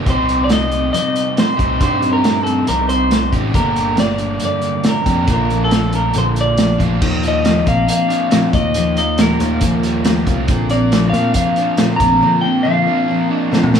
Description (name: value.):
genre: folk rock and heartland rock.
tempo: 138 BPM.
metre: 4/4.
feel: straight.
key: unclear.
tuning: A4 = 436 Hz.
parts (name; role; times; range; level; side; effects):
picked steel-string acoustic guitar; accompaniment; 0.0-13.8 s; G2 to Bb4; -20 LUFS; left 2 dB; none.
crunchy overdriven guitar; riff; 0.0-13.8 s; G2 to G4; -21 LUFS; right 2 dB; none.
picked electric bass; bass; 0.0-12.2 s; G1 to Bb2; -20 LUFS; equal; none.
electric guitar through a small old amp; melody; 0.1-13.7 s; A4 to Bb5; -19 LUFS; left 1 dB; tape echo.
vintage drum kit; drums; 0.1-13.8 s; crash cymbal, hi-hat, kick drum, snare drum, toms; -18 LUFS; right 1 dB; none.
room: light reverb, small room ambience.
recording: none.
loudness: -13 LUFS.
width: side -7 dB against mid.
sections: 0.0-7.0 A section; 7.0-13.8 B section.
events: drum fill 13.5.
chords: 0.1 Cm; 3.5 Gm; 5.3 Bb; 7.0 Ebadd9; 7.7 Bbadd9; 8.5 Ebadd9; 10.5 Bbadd9.